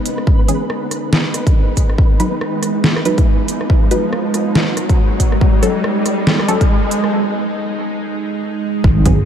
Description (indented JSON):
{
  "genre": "deep dubstep",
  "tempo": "140 BPM",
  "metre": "4/4",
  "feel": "swing 58% on 16ths, half-time",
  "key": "unclear",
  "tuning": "A4 = 440 Hz",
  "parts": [
    { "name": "bowed-like drone", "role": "sustained chords", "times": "0.0-9.3 s", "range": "F#3 to D#4", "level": "-21 LUFS", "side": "right 1 dB", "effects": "built-in reverb, phaser" },
    { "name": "riser and impact", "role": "sound effects", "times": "0.0-9.3 s", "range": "none", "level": "-23 LUFS", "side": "right 1 dB", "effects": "none" },
    { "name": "flickering grainy texture", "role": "texture", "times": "0.0-7.1 s", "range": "B3 to B4", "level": "-28 LUFS", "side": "left 1 dB", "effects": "built-in reverb" },
    { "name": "dubstep drum kit", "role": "drums", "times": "0.1-9.2 s", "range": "hi-hat, rim click, snare drum", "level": "-19 LUFS", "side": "equal", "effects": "none" },
    { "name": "electronic kick drum", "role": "drums", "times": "0.3-9.2 s", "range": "none", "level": "-13 LUFS", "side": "equal", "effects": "none" },
    { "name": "filtered dub chord stab", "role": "stabs", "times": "0.5-9.2 s", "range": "E3 to B4", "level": "-22 LUFS", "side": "equal", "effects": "phaser, dub echo" },
    { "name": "deep soft wobble bass", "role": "bass", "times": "8.8-9.3 s", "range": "G#1", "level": "-14 LUFS", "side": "equal", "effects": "chorus" }
  ],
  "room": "light reverb, digital ambience",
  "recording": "dark, warm production",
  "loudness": "-13 LUFS",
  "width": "side -9 dB against mid",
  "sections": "0.0-8.8 A section",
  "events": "build-up 0.0-8.8; riser 0.0-7.1; filter sweep on synth drone 0.0-8.8; break 7.1-8.8; impact 8.8-9.3",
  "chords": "0.0 C#m; 2.0 B; 5.4 N.C."
}